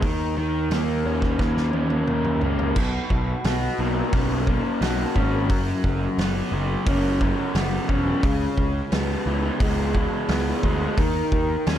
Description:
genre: rock, shoegaze and dream pop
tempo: 88 BPM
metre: 4/4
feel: straight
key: B major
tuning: A4 = 442 Hz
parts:
  - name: raw garage guitar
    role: riff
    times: 0.0-11.8 s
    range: B2 to F#4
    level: -24 LUFS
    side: equal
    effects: overdrive, lush chorus
  - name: fuzz picked electric bass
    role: bass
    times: 0.0-11.8 s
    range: E1 to D#2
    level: -25 LUFS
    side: equal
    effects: overdrive
  - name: loose indie drum kit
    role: drums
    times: 0.0-11.8 s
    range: crash cymbal, hi-hat, kick drum, snare drum, toms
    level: -26 LUFS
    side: equal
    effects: none
room: light reverb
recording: dark, warm production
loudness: -20 LUFS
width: side -10 dB against mid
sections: 0.0-2.8 A section; 2.8-11.8 B section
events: drum fill 1.4-2.8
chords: 0.0 D#5; 2.8 Bsus2; 5.5 F#sus4; 8.2 C#m7; 11.0 D#5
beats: | 0.02 0.70 1.39 2.07 | 2.76 3.44 4.13 4.81 | 5.49 6.18 6.86 7.55 | 8.23 8.92 9.60 10.29 | 10.98 11.66

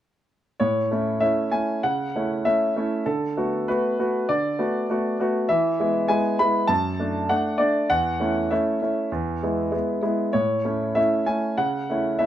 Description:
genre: classical-period piano sonatina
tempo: 98 BPM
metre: 4/4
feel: straight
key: A major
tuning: A4 = 441 Hz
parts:
  - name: clear concert grand piano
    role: solo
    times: 0.6-12.3 s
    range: E2 to B5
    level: -21 LUFS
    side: equal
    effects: none
room: light reverb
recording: none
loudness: -21 LUFS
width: side -11 dB against mid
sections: 0.6-12.3 A section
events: none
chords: 0.6 A; 1.8 A/C#; 3.1 Bm7/D; 5.5 E; 6.7 D/F#; 7.9 A/E; 9.1 E; 10.4 A; 11.6 A/C#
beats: | 0.59 1.22 1.83 2.45 | 3.06 3.67 4.28 4.88 | 5.48 6.08 6.69 7.29 | 7.90 8.51 9.12 9.74 | 10.36 10.97 11.59 12.21

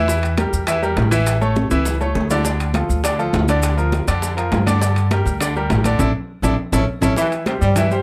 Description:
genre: latin, salsa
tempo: 203 BPM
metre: 4/4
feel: straight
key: unclear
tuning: A4 = 440 Hz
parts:
  - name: bright baby grand piano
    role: accompaniment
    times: 0.0-8.0 s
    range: D3 to E5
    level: -23 LUFS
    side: equal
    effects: none
  - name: upright bass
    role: bass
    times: 0.0-8.0 s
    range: A1 to G2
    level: -22 LUFS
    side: equal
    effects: none
  - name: bongos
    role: percussion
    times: 0.1-7.9 s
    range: none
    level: -32 LUFS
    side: equal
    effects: none
  - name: congas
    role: percussion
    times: 0.1-8.0 s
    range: none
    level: -28 LUFS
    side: equal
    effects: none
  - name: maracas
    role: percussion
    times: 0.1-8.0 s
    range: none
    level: -34 LUFS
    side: equal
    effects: none
  - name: timbales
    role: percussion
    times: 0.2-7.9 s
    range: none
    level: -28 LUFS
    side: equal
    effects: none
  - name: bright trombone section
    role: second line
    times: 7.2-7.8 s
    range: C3 to G3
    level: -24 LUFS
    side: equal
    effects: none
room: light reverb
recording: close, detailed microphones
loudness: -18 LUFS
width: mono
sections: 0.0-7.2 A section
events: drum fill 1.6-2.4, 6.3-7.2; band accent 6.0-7.2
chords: 0.1 Edim; 1.3 A; 2.4 Dm; 3.6 Bb/D; 4.8 Gm; 6.0 Asus4; 6.6 A; 7.2 C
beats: | 0.08 0.38 0.67 0.97 | 1.26 1.56 1.86 2.15 | 2.45 2.74 3.04 3.33 | 3.63 3.92 4.22 4.52 | 4.81 5.11 5.40 5.70 | 5.99 6.29 6.58 6.88 | 7.17 7.47 7.76

